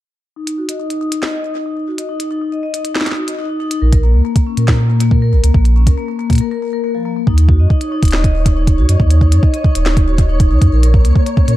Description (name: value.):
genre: IDM.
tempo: 139 BPM.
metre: 4/4.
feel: straight.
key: Eb minor.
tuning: A4 = 440 Hz.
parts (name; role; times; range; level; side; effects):
vibraphone with medium hard mallets; arpeggios; 0.4-11.6 s; F3 to Eb5; -20 LUFS; moving between left 9 dB and right 1 dB; auto-pan, low-pass filter, digital delay.
glitchy drum kit; drums; 0.5-11.6 s; hi-hat, snare drum; -22 LUFS; equal; digital delay.
warm sub bass; bass; 3.8-11.6 s; Eb1 to Bb2; -11 LUFS; equal; none.
electronic kick drum; drums; 3.9-11.5 s; none; -12 LUFS; equal; none.
flickering grainy texture; texture; 7.9-11.6 s; Db5; -26 LUFS; equal; built-in reverb, sidechain pumping.
room: digital ambience.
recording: dark, warm production.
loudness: -12 LUFS.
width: side -15 dB against mid.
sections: 0.4-7.3 A section; 7.3-11.6 B section.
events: filter sweep on vibraphone 0.4-7.3; break 6.4-7.3.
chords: 0.4 N.C.; 7.3 Ebm; 10.7 Bbm.